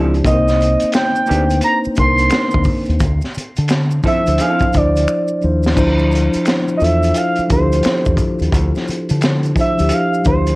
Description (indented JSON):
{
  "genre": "R&B, neo-soul",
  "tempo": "87 BPM",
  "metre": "4/4",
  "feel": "swing 63% on 16ths",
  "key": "unclear",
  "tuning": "A4 = 441 Hz",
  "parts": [
    { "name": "electric guitar through a small old amp", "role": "second line", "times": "0.0-4.6 s", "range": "Eb3 to A4", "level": "-23 LUFS", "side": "right 4 dB", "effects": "none" },
    { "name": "mellow tine electric piano", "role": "accompaniment", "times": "0.0-10.6 s", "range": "F3 to D5", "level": "-18 LUFS", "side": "left 1 dB", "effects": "slow stereo tremolo" },
    { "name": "deep dub fingered electric bass", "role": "bass", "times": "0.0-10.6 s", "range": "C2 to D3", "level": "-16 LUFS", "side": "equal", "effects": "none" },
    { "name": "crunchy breakbeat drum kit", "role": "drums", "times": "0.1-10.6 s", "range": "crash cymbal, hi-hat, kick drum, snare drum", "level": "-19 LUFS", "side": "equal", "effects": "none" },
    { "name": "expressive synth lead", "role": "melody", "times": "0.3-10.6 s", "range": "C5 to C6", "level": "-18 LUFS", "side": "right 1 dB", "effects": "chorus" },
    { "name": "maracas and finger snaps", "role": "percussion", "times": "0.3-10.6 s", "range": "none", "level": "-31 LUFS", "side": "left 2 dB", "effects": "none" }
  ],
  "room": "light reverb",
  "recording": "worn, warbling old tape, cassette tape, warbly pitch drift",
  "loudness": "-13 LUFS",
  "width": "side -21 dB against mid",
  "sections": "0.0-5.8 A section; 5.8-10.6 A section",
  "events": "drum fill 5.1-5.8",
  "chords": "0.2 Cm9; 3.0 Dm9"
}